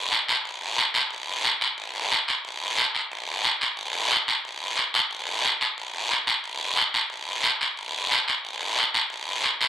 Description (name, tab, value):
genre	latin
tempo	181 BPM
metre	4/4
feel	straight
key	none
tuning	none
part	guiro	percussion	0.1-9.7 s	none	-22 LUFS	equal	none
room	light reverb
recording	dry, close 1970s-style studio recording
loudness	-22 LUFS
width	side -11 dB against mid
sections	0.0-9.7 A section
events	none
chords	none